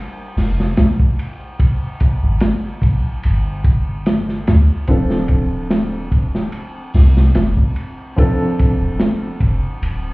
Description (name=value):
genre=trip hop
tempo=73 BPM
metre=4/4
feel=swing 54% on 16ths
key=D minor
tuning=A4 = 440 Hz
part: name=felt-muted upright piano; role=accompaniment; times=0.0-10.1 s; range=F3 to Bb4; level=-22 LUFS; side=equal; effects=tremolo, tape echo
part: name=soft 808-style bass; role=bass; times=0.4-10.1 s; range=D1 to D2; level=-15 LUFS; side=equal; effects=none
part: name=crunchy breakbeat drum kit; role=drums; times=0.4-10.0 s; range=hi-hat, kick drum, ride cymbal, snare drum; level=-18 LUFS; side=equal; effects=none
room=small room reverb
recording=heard muffled through a wall, club reverb, vinyl crackle, EQ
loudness=-14 LUFS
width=side -22 dB against mid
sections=0.0-10.1 A section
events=filter sweep on felt piano 0.0-10.1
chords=0.0 Gm; 4.9 Dm7